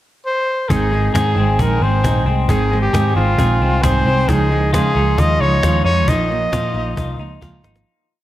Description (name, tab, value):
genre	jangly indie pop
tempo	134 BPM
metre	4/4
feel	straight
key	Ab major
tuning	A4 = 439 Hz
part	warm trumpet	melody	0.3-7.4 s	F4 to Eb5	-20 LUFS	equal	none
part	fingerpicked steel-string acoustic guitar	accompaniment	0.7-7.9 s	Ab2 to Eb4	-22 LUFS	right 4 dB	none
part	electric guitar through a small old amp	arpeggios	0.7-8.2 s	Eb3 to Ab4	-22 LUFS	left 3 dB	slapback echo, digital delay
part	vintage muted picked electric bass	bass	0.7-7.8 s	Ab1 to Db3	-18 LUFS	equal	none
part	cajon	drums	0.7-7.9 s	none	-21 LUFS	equal	none
room	moderate lush hall reverb, RT60 1.9 s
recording	big arena sound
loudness	-14 LUFS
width	side -14 dB against mid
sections	0.0-0.7 pickup bar; 0.7-7.9 verse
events	fade-out 6.1-7.9; drum fill 7.4-7.9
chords	0.0 N.C.; 0.7 Ab; 4.3 Dbadd9; 6.1 Bbsus4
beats	0.25 | 0.70 1.15 1.60 2.04 | 2.49 2.94 3.39 3.84 | 4.29 4.73 5.18 5.63 | 6.08 6.52 6.97 7.42